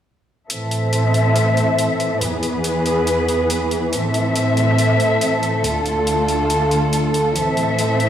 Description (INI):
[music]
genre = heavy wobble dubstep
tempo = 140 BPM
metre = 4/4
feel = swing 54% on 16ths, half-time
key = A harmonic minor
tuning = A4 = 440 Hz
[part]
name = muted studio string section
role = sustained chords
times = 0.5-8.1 s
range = D2 to E5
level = -16 LUFS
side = equal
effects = low-pass filter
[part]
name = electronic hi-hat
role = drums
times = 0.5-8.1 s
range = none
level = -27 LUFS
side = equal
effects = overdrive
[sound]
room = moderate lush hall reverb, RT60 2.2 s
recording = played on a big sound system in a bare room, large studio reverb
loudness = -16 LUFS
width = side -10 dB against mid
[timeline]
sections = 0.5-8.1 A section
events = none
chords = 0.5 Am; 2.2 E; 3.9 Am; 5.6 Dm; 7.4 Am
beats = | 0.50 0.93 1.36 1.78 | 2.21 2.64 3.07 3.50 | 3.93 4.36 4.79 5.21 | 5.64 6.07 6.50 6.93 | 7.36 7.79